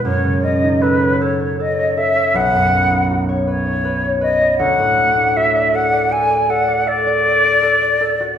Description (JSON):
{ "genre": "classical, impressionist duo for flute and harp", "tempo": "53 BPM (dotted quarters)", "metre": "12/8", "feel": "rubato", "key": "unclear", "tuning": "A4 = 438 Hz", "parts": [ { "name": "concert flute", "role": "melody", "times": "0.0-8.4 s", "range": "B4 to G#5", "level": "-15 LUFS", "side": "left 1 dB", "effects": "none" }, { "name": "concert harp", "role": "accompaniment", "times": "0.0-8.4 s", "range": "B1 to D#5", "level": "-18 LUFS", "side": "equal", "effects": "none" } ], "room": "wet recital hall reverb, RT60 1.4 s", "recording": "recorded in a church or concert hall", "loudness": "-13 LUFS", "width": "side -9 dB against mid", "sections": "0.0-8.4 A section", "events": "none", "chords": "0.0 F#m6; 2.4 Badd9; 4.6 Dmaj7" }